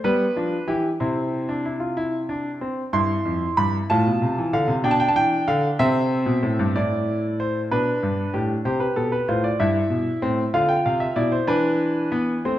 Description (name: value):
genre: classical, baroque-style 3-part fugue for grand piano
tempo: 63 BPM (dotted quarters)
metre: 6/8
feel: straight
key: C major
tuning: A4 = 439 Hz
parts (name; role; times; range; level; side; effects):
- clear grand piano; solo; 0.0-12.6 s; F2 to C6; -20 LUFS; equal; none
room: wet recital hall reverb, RT60 1.5 s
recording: none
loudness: -20 LUFS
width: side -13 dB against mid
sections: 0.0-2.9 A section; 2.9-6.7 B section; 6.7-12.6 A section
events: none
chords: 0.0 G7; 1.0 C; 3.9 F/A; 4.8 G7/B; 5.8 C; 6.7 Am; 7.7 G; 8.7 F; 9.6 Em/G; 10.5 Bdim; 11.5 E5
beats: 0.04 | 1.01 1.98 | 2.95 3.90 | 4.85 5.79 | 6.75 7.71 | 8.65 9.60 | 10.54 11.49 | 12.45